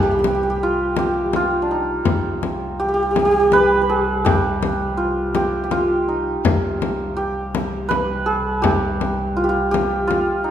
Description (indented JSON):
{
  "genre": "Persian modal ensemble",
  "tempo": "82 BPM",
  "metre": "3/4",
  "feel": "straight",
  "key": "C avaz esfahan",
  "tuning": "A4 = 440 Hz",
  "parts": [
    { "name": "santur", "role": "melody", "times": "0.0-10.5 s", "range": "D4 to B4", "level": "-18 LUFS", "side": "right 1 dB", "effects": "none" },
    { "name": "bright double bass", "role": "drone", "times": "0.0-10.5 s", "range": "C2", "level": "-27 LUFS", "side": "equal", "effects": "none" },
    { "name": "frame drum", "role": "percussion", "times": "0.2-10.3 s", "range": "none", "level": "-23 LUFS", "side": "left 4 dB", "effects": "none" }
  ],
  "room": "wet recital hall reverb, RT60 1.7 s",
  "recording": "minimal, uncompressed stereo recording, lossy compression artefacts",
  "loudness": "-17 LUFS",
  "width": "side -10 dB against mid",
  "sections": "0.0-10.5 A section",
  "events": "none",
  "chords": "none"
}